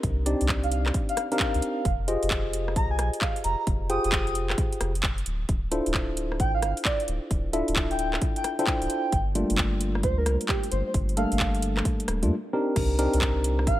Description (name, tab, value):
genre	UK garage, two-step garage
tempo	132 BPM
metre	4/4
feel	swing 65% on 16ths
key	C dorian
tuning	A4 = 440 Hz
part	tine electric piano	stabs	0.0-13.8 s	G3 to G5	-29 LUFS	left 1 dB	tape echo
part	soft dub sub bass	bass	0.0-13.8 s	D1 to G2	-28 LUFS	equal	sidechain pumping
part	electronic kick drum	drums	0.0-13.8 s	none	-28 LUFS	equal	none
part	house drum kit	drums	0.0-13.8 s	crash cymbal, handclaps, hi-hat, rim click	-30 LUFS	equal	none
part	breathy flute-like synth lead	melody	0.6-13.8 s	G4 to Eb6	-31 LUFS	right 1 dB	wide subtle chorus, tape echo
room	digital ambience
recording	none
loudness	-23 LUFS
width	side -14 dB against mid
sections	0.0-12.8 A section; 12.8-13.8 B section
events	drop 12.8-13.8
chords	0.0 Cm9; 1.9 Fm9; 5.3 Dm9; 9.1 Gm9; 12.8 Cm9